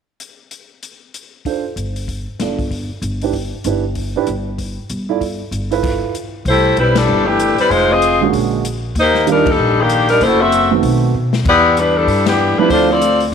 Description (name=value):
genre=jazz, big band swing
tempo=192 BPM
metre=4/4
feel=swing 61% on 8ths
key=unclear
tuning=A4 = 439 Hz
part: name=swinging big-band drum kit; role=drums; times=0.2-13.3 s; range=crash cymbal, hi-hat, kick drum, ride cymbal, snare drum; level=-25 LUFS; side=left 4 dB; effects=none
part: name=warm baby grand piano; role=accompaniment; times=1.5-6.1, 8.2-13.0 s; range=D3 to D5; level=-19 LUFS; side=right 11 dB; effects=none
part: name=upright bass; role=bass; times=1.8-13.3 s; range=F1 to B2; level=-20 LUFS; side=equal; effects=none
part: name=warm saxophone section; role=melody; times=6.5-13.2 s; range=Eb3 to E5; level=-13 LUFS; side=left 2 dB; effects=none
room=moderate plate reverb, RT60 1.9 s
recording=1960s-style stereo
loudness=-13 LUFS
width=side -7 dB against mid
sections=0.2-1.5 A section; 1.5-6.5 B section; 6.5-13.3 C section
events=band accent 6.9, 9.4, 12.2; drum fill 11.1-11.5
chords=0.2 N.C.; 1.5 G7sus4; 2.7 G13; 6.5 C69; 7.7 Fm7; 8.3 Bb7alt; 9.0 Ebmaj7; 10.2 F#m7b5; 10.8 B7b9; 11.5 Em7; 12.7 Dm7